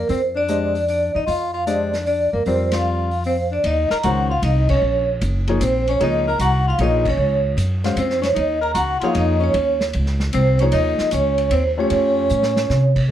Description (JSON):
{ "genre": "modal jazz", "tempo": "152 BPM", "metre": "3/4", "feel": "swing 67% on 8ths", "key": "Eb dorian from 3.6 s", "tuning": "A4 = 441 Hz", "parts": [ { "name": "vibraphone with medium mallets", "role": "melody", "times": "0.0-12.9 s", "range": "Bb4 to Bb5", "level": "-20 LUFS", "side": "right 2 dB", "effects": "none" }, { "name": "warm tenor saxophone", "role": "second line", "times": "0.0-13.1 s", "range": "A3 to Bb4", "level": "-26 LUFS", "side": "left 7 dB", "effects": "none" }, { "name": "upright bass", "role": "bass", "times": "0.0-13.1 s", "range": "Gb1 to B#2", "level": "-21 LUFS", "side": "equal", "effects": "none" }, { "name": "vintage drum kit", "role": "drums", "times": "0.1-13.0 s", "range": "crash cymbal, hi-hat, kick drum, ride cymbal, snare drum", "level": "-31 LUFS", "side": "equal", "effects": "none" }, { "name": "warm grand piano", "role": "accompaniment", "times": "0.5-12.3 s", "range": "Eb3 to F5", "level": "-23 LUFS", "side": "left 3 dB", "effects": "none" } ], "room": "studio reverb", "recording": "none", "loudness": "-16 LUFS", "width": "side -11 dB against mid", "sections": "0.0-3.6 A section; 3.6-13.1 B section", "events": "band accent 2.7, 4.6, 7.0; drum fill 12.3-12.7", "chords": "0.0 Bbadd9; 3.6 Ebm7; 6.0 Gb; 8.4 Eb5; 10.7 Db69; 11.9 A7alt" }